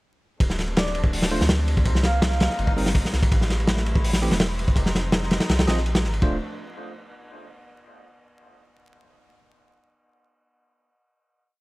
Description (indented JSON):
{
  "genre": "drum and bass, jungle",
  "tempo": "165 BPM",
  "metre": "4/4",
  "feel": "straight",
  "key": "D minor",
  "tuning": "A4 = 440 Hz",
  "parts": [
    { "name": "muted studio string section", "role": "sustained chords", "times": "0.4-6.4 s", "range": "F3 to E4", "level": "-33 LUFS", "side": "left 1 dB", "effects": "none" },
    { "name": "soft dub sub bass", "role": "bass", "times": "0.4-6.4 s", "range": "D1 to D2", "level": "-24 LUFS", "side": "equal", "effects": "tube saturation" },
    { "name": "crunchy breakbeat drum kit", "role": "drums", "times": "0.4-6.3 s", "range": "hi-hat, kick drum, ride cymbal, snare drum", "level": "-21 LUFS", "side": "equal", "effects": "none" },
    { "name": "breathy flute-like synth lead", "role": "melody", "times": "0.8-2.7 s", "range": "D5 to F5", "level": "-32 LUFS", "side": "right 1 dB", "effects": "lush chorus, dub echo" },
    { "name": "bell-like tine electric piano", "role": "stabs", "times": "1.3-6.4 s", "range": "E3 to Eb5", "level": "-31 LUFS", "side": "right 1 dB", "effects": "dub echo" }
  ],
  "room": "small room reverb",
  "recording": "vinyl crackle",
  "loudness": "-19 LUFS",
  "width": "side -21 dB against mid",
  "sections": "0.4-6.2 drop; 6.2-7.7 final chord",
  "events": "drop 0.4-6.2",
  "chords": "0.4 Dm7; 1.9 Cm7; 3.3 Am7; 4.8 Fm7; 6.2 Dm7"
}